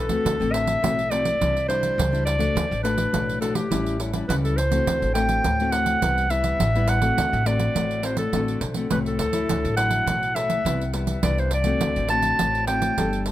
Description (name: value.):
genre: samba and choro.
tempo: 104 BPM.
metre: 4/4.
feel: straight.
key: unclear.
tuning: A4 = 440 Hz.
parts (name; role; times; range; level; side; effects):
clear clarinet; melody; 0.0-13.2 s; G4 to A5; -24 LUFS; equal; tape echo.
nylon-string guitar; accompaniment; 0.0-13.3 s; G2 to A4; -27 LUFS; left 4 dB; none.
upright bass; bass; 0.0-13.3 s; G1 to D2; -26 LUFS; equal; none.
pandeiro; percussion; 0.1-13.3 s; none; -28 LUFS; right 5 dB; none.
room: light reverb.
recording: close, detailed microphones.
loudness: -20 LUFS.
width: side -13 dB against mid.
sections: 0.2-13.3 A section.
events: none.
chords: 0.2 D7; 1.4 Cadd9; 2.6 D; 3.7 A7; 4.9 D7; 6.0 Cmaj7; 7.2 D7; 9.5 Dadd9; 10.7 Cmaj7; 11.8 D7.